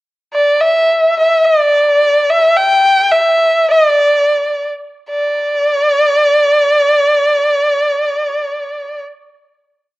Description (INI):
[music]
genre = chinese traditional, Chinese chamber ensemble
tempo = free time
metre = none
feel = none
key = unclear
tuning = A4 = 440 Hz
[part]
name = rich erhu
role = solo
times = 0.3-9.0 s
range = D5 to G5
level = -10 LUFS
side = equal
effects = none
[sound]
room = moderate spring reverb, RT60 1.4 s, small room reverb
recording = worn, warbling old tape, cassette tape, warbly pitch drift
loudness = -10 LUFS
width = side -19 dB against mid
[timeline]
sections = 0.3-5.1 A section; 5.1-8.2 final note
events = slowing down 2.6-5.1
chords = none